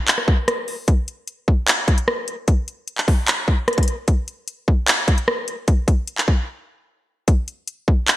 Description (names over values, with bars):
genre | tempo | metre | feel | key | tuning
hip hop | 150 BPM | 4/4 | half-time | none | none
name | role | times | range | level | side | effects
trap drum kit | drums | 0.1-8.2 s | handclaps, hi-hat, kick drum, rim click | -16 LUFS | equal | gated reverb
room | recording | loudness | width
light reverb, digital ambience | bright 1980s-style digital production | -18 LUFS | side -16 dB against mid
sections
0.0-8.2 A section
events
break 6.5-7.3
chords
none